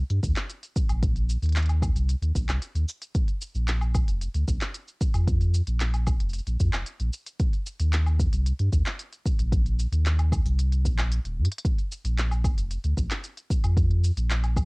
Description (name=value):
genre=folktronica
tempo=113 BPM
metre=4/4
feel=straight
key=Bb major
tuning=A4 = 438 Hz
part: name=warm sub bass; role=bass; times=0.0-14.6 s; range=Eb1 to G2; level=-23 LUFS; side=equal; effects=tube saturation
part: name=organic electronic drum kit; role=drums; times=0.1-14.7 s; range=handclaps, hi-hat, shaker, woodblock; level=-34 LUFS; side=equal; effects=small room ambience, cassette tape
part: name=electronic kick drum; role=drums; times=0.2-14.7 s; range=none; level=-25 LUFS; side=equal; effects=small room ambience, cassette tape
room=little or no reverb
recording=home recording on cassette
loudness=-23 LUFS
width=side -32 dB against mid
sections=0.0-11.6 A section; 11.6-14.7 A section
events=break 11.1-11.6; drum fill 11.4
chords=none